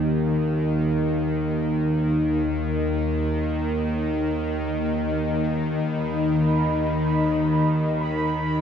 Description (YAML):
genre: dark ambient drone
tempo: free time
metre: none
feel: none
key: Eb major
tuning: A4 = 438 Hz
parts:
  - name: deep dark ambient pad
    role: sustained chords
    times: 0.0-8.6 s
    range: Eb3 to Eb5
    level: -26 LUFS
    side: left 1 dB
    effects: chorus, built-in reverb
  - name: gamelan-type bronze metallophone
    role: arpeggios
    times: 0.0-3.4 s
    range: none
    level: barely audible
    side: none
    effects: none
  - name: bowed-like drone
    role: drone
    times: 0.0-8.6 s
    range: Eb2 to Eb3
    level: -23 LUFS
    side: equal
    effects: built-in reverb
  - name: bubbling stepped-filter texture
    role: texture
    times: 5.7-8.6 s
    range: Cb6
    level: -30 LUFS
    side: right 6 dB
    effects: chorus, built-in reverb
room: wet cathedral reverb, RT60 4.7 s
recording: dark, warm production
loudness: -21 LUFS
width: side -8 dB against mid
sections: 0.0-8.6 A section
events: none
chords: 0.0 Eb; 5.8 Abm/Eb (rootless)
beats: free time